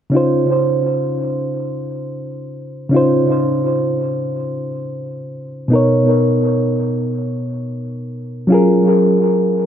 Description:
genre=R&B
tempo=43 BPM (dotted quarters)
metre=6/8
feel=straight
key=Db major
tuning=A4 = 439 Hz
part: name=reed electric piano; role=accompaniment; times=0.1-9.7 s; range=Cb3 to Db5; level=-15 LUFS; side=equal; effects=tape echo
room=moderate echo chamber reverb, RT60 1.6 s, digital ambience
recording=echo-heavy mix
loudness=-14 LUFS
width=side -9 dB against mid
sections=0.1-9.7 A section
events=none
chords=0.1 Dbmaj9; 5.7 Cbmaj9; 8.5 Gbmaj9

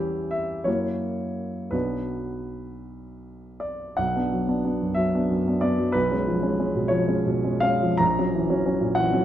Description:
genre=classical, romantic character piece for solo piano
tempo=51-66 BPM (dotted quarters)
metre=6/8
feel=rubato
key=B minor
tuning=A4 = 440 Hz
part: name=warm grand piano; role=solo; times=0.0-9.2 s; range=A#1 to A#5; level=-22 LUFS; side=equal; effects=none
room=moderate recital hall reverb, RT60 1.3 s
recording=dark, warm production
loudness=-22 LUFS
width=side -11 dB against mid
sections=0.0-4.0 A section; 4.0-9.2 B section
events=none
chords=0.0 C#dim/E; 0.7 F#7; 1.7 Bm; 6.0 C#7/B; 8.0 F#7/A#

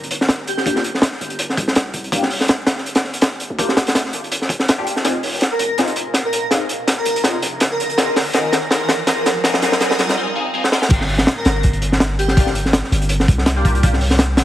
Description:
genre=drum and bass, jungle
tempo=164 BPM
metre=4/4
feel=swing 55% on 16ths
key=G phrygian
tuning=A4 = 440 Hz
part: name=long sustained 808-style bass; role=bass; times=0.0-14.4 s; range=F1 to D2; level=-22 LUFS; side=equal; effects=high-pass filter
part: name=crunchy breakbeat drum kit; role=drums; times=0.0-14.4 s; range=crash cymbal, hi-hat, kick drum, snare drum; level=-16 LUFS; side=equal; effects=high-pass filter on kick, high-pass filter on hats, high-pass filter on cymbals, high-pass filter on snare, high-pass filter on room
part: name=airy dreamy lead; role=melody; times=0.5-0.8, 5.5-12.5 s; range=G4 to Bb4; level=-24 LUFS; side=equal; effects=chorus, phaser, dub echo
part: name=band-passed chord stab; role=stabs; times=0.7-13.9 s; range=Bb3 to Ab4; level=-25 LUFS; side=left 2 dB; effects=phaser, ensemble chorus, dub echo
part: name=riser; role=sound effects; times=6.1-10.2 s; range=none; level=-31 LUFS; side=equal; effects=none
room=light reverb, studio ambience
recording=heavily compressed radio sound, multiband compression, vinyl crackle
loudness=-15 LUFS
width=side -13 dB against mid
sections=0.0-10.9 A section; 10.9-14.4 B section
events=build-up 0.0-10.9; filter sweep on synth stab 0.0-10.9; drum fill 5.0-10.2, 10.6; riser 6.1-10.2; break 10.2-10.9; drop 10.9-14.4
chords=0.0 Gm7; 5.0 Fm7; 10.9 Gm7

